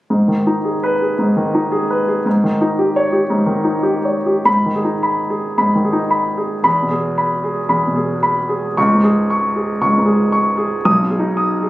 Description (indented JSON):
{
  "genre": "classical, romantic character piece for solo piano",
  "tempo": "112 BPM",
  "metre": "4/4",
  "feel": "uneven beats, rubato",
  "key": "G# minor",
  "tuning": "A4 = 440 Hz",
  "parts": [
    { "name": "warm grand piano", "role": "solo", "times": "0.1-11.7 s", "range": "B1 to D#6", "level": "-14 LUFS", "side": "equal", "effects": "none" }
  ],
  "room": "light reverb",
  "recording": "recorded on a phone in the room, studio ambience, compression",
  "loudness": "-14 LUFS",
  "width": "side -16 dB against mid",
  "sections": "0.1-4.5 A section; 4.5-11.7 B section",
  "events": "none",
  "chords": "0.1 G#m; 2.3 D#7/G#; 4.5 G#m; 6.7 E; 8.8 C#5; 10.9 G#m/B",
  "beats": "| 0.10 0.65 1.20 1.73 | 2.26 2.78 3.29 3.84 | 4.46 5.04 5.58 6.11 | 6.66 7.18 7.70 8.23 | 8.77 9.30 9.81 10.33 | 10.86 11.37"
}